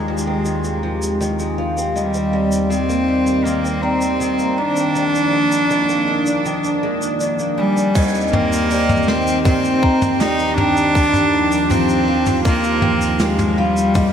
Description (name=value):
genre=folktronica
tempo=80 BPM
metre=4/4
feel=straight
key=Eb major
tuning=A4 = 440 Hz
part: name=clear cello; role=melody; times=0.0-14.1 s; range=G3 to Eb4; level=-18 LUFS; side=equal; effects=tape echo
part: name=warm analog pad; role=sustained chords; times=0.0-14.1 s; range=Eb2 to G4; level=-23 LUFS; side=equal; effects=chorus
part: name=picked old ladder-braced acoustic guitar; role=arpeggios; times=0.0-14.1 s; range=Eb3 to G4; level=-24 LUFS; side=right 2 dB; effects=low-pass filter, tape echo
part: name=soft brush drum kit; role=drums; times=0.2-14.1 s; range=crash cymbal, hi-hat, shaker, snare drum, toms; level=-24 LUFS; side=equal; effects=none
part: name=vibraphone with soft mallets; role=second line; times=1.6-14.1 s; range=D5 to Bb5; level=-26 LUFS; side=left 2 dB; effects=tape echo
part: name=electronic kick drum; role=drums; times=8.0-14.1 s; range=none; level=-17 LUFS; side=equal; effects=none
room=wet huge ambient reverb, RT60 9.1 s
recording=dreamy mix soaked in reverb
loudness=-15 LUFS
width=side -8 dB against mid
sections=0.0-8.0 A section; 8.0-14.1 B section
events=none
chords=0.0 Fm7/Eb; 2.0 Eb6; 5.0 Bb7/Eb; 8.0 Eb6; 11.0 F5/Eb